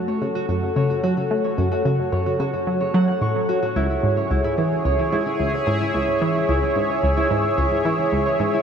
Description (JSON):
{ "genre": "ambient, sequencer-driven space music", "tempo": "110 BPM", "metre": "4/4", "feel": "straight", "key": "F# minor", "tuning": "A4 = 439 Hz", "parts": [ { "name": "sweeping resonant pad", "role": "sustained chords", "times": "0.0-8.6 s", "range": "G#4 to F#5", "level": "-22 LUFS", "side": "equal", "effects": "chorus" }, { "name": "concert harp", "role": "arpeggios", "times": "0.0-8.6 s", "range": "E4 to C#6", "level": "-26 LUFS", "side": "equal", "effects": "auto-pan, analog delay" }, { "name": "analog pluck", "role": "riff", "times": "0.0-8.5 s", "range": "C#2 to A3", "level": "-22 LUFS", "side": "equal", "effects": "chorus, analog delay" } ], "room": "wet huge ambient reverb, RT60 8.1 s", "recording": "dark, warm production", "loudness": "-18 LUFS", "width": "side -7 dB against mid", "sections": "0.0-8.6 A section", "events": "none", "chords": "0.0 F#m; 3.8 C#m", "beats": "0.49 1.03 | 1.58 2.12 2.67 3.22 | 3.76 4.31 4.85 5.40 | 5.94 6.49 7.03 7.58 | 8.12" }